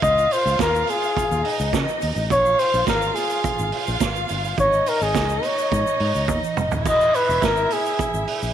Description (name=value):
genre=disco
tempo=106 BPM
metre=4/4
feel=straight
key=Db major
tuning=A4 = 440 Hz
part: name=breathy flugelhorn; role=melody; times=0.0-8.5 s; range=G#4 to Eb5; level=-20 LUFS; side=left 1 dB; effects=none
part: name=warm studio violin section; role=second line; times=0.0-8.5 s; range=Eb4 to F5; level=-26 LUFS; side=right 1 dB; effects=none
part: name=fingered electric bass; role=bass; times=0.0-8.5 s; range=Eb1 to Db3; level=-26 LUFS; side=left 1 dB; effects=none
part: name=vintage drum kit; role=drums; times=0.0-8.4 s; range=crash cymbal, hi-hat, kick drum, snare drum, toms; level=-26 LUFS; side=right 6 dB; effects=none
part: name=egg shaker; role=percussion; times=0.0-8.5 s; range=none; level=-40 LUFS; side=left 18 dB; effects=none
room=light reverb, studio reverb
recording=1960s-style stereo with parts hard left and right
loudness=-18 LUFS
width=side -10 dB against mid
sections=0.0-8.5 A section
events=drum fill 6.3-6.9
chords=0.0 Dbadd9; 2.3 Bb5; 4.6 Absus4; 6.9 E